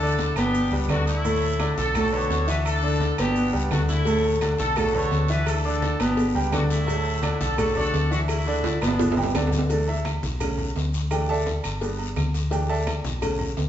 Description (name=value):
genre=latin, salsa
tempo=170 BPM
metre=4/4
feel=straight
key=D major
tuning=A4 = 442 Hz
part: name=bright horn section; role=melody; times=0.0-9.5 s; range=G3 to C#5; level=-28 LUFS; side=left 1 dB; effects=none
part: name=clear baby grand piano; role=accompaniment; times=0.0-13.5 s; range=A2 to A5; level=-25 LUFS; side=right 1 dB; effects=none
part: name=hollow-body short-scale fingered electric bass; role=bass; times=0.0-13.7 s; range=G1 to D2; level=-26 LUFS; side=left 1 dB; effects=none
part: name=congas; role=percussion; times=0.0-13.7 s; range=none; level=-35 LUFS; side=left 1 dB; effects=none
part: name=maracas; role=percussion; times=0.0-13.7 s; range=none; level=-45 LUFS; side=right 4 dB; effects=none
part: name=guiro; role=percussion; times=0.2-13.7 s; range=none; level=-39 LUFS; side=left 5 dB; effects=none
part: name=timbales and agogo bells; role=percussion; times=0.2-13.7 s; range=none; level=-33 LUFS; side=right 3 dB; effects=none
part: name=claves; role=percussion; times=0.4-13.4 s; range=none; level=-42 LUFS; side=right 6 dB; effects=none
part: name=cowbell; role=percussion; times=4.1-13.7 s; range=none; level=-35 LUFS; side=left 3 dB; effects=none
room=wet large studio reverb, RT60 1.3 s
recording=band playing live in one room, nothing above 7.8 kHz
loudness=-21 LUFS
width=side -10 dB against mid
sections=0.0-9.7 A section; 9.7-13.7 B section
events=drum fill 8.6-9.7; grand piano solo 9.7-13.7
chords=0.0 Dsus2; 0.5 G; 1.2 Dsus2; 2.0 Bm7; 2.7 Dsus2; 3.4 G; 4.1 D5; 4.8 Bm7; 5.5 Dsus2; 6.2 G; 6.9 Dsus2; 7.6 Bm7; 8.3 Dsus2; 9.0 G; 9.7 Dsus2; 10.4 Bm7; 11.1 Dsus2; 11.8 G; 12.5 Dsus2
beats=0.19 0.54 0.90 | 1.25 1.60 1.95 2.30 | 2.65 3.01 3.36 3.71 | 4.06 4.42 4.77 5.12 | 5.47 5.83 6.18 6.53 | 6.88 7.24 7.59 7.94 | 8.29 8.65 9.00 9.35 | 9.71 10.06 10.41 10.76 | 11.12 11.47 11.82 12.17 | 12.52 12.88 13.23 13.58